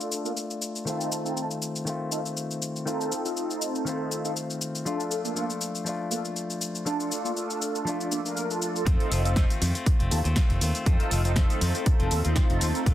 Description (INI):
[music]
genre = filtered disco house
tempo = 120 BPM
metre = 4/4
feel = swing 55% on 16ths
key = unclear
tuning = A4 = 440 Hz
[part]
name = mellow synth brass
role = accompaniment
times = 0.0-12.9 s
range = Bb3 to C5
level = -31 LUFS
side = right 1 dB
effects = chorus, phaser, sidechain pumping, low-pass filter
[part]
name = direct-recorded clean electric guitar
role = riff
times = 0.0-12.9 s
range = Eb3 to F4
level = -32 LUFS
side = left 2 dB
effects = sidechain pumping, low-pass filter
[part]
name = punchy analog drum machine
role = drums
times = 0.0-12.9 s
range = hi-hat, shaker, snare drum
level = -32 LUFS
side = left 1 dB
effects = overdrive, sidechain pumping on perc, sidechain pumping on hats
[part]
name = modern bright fingered electric bass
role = bass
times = 8.9-12.9 s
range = F1 to F2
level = -26 LUFS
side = equal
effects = sidechain pumping, low-pass filter
[part]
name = electronic kick drum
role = drums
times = 8.9-12.9 s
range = none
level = -22 LUFS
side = equal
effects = none
[sound]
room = light reverb, digital ambience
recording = dense, heavily limited modern master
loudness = -25 LUFS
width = side -13 dB against mid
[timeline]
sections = 0.0-8.9 A section; 8.9-12.9 B section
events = filter sweep 0.0-8.9; drop 8.9-12.9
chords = 0.0 Bbmaj7 (rootless); 0.9 F7; 4.9 Bbmaj7; 8.9 F7